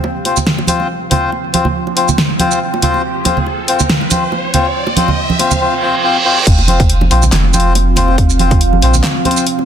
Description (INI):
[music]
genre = deep dubstep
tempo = 140 BPM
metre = 4/4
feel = swing 55% on 16ths, half-time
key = unclear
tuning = A4 = 441 Hz
[part]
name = deep dark ambient pad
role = sustained chords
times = 0.0-9.7 s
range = C4 to F5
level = -22 LUFS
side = right 2 dB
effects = chorus, built-in reverb
[part]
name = bongos and congas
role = percussion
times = 0.0-9.7 s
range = none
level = -18 LUFS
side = right 4 dB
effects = dub echo
[part]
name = riser and reverse cymbal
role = sound effects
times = 1.5-6.5 s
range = none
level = -20 LUFS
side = right 4 dB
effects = none
[part]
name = melodica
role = stabs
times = 0.3-9.4 s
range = C4 to C5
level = -16 LUFS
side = left 3 dB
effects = low-pass filter, dub echo
[part]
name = deep house drum kit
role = drums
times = 0.3-9.6 s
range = crash cymbal, handclaps, hi-hat, shaker, snare drum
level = -17 LUFS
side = equal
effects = none
[part]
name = saturated sub bass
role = bass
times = 6.5-9.0 s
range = F1 to Bb1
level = -12 LUFS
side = equal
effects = none
[part]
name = electronic kick drum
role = drums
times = 6.5-8.6 s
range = none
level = -12 LUFS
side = equal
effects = none
[sound]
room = moderate lush hall reverb, RT60 1.7 s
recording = dense, heavily limited modern master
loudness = -10 LUFS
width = side -9 dB against mid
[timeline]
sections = 0.0-6.5 A section; 6.5-9.7 B section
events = build-up 0.0-6.5; riser 1.5-5.6; reverse cymbal 5.6-6.5; drop 6.5-9.7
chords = 0.0 F5